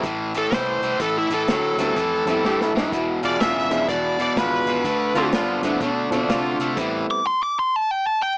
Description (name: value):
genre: electric blues shuffle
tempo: 125 BPM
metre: 4/4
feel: swing 63% on 8ths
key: A minor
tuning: A4 = 437 Hz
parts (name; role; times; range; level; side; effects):
- clear upright piano; accompaniment; 0.0-7.2 s; F3 to F4; -26 LUFS; right 1 dB; none
- crunchy overdriven guitar; riff; 0.0-7.1 s; E2 to B3; -24 LUFS; left 1 dB; none
- vintage muted fingered electric bass; bass; 0.0-7.0 s; E1 to C3; -32 LUFS; equal; none
- vintage drum kit; drums; 0.0-6.9 s; crash cymbal, hi-hat, kick drum, snare drum; -27 LUFS; equal; none
- smooth overdriven lead guitar; melody; 0.4-8.4 s; E4 to D6; -21 LUFS; equal; none
- growling tenor saxophone; second line; 2.3-6.4 s; C4 to G4; -27 LUFS; equal; analog delay
- clear saxophone section; stabs; 3.2-6.7 s; G#3 to F4; -25 LUFS; equal; none
room: light reverb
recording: small speaker sound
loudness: -19 LUFS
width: side -29 dB against mid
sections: 0.0-8.4 A section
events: drum fill 2.4-2.9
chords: 0.0 Am7; 2.9 E7b9; 4.8 Dm7; 6.8 Am7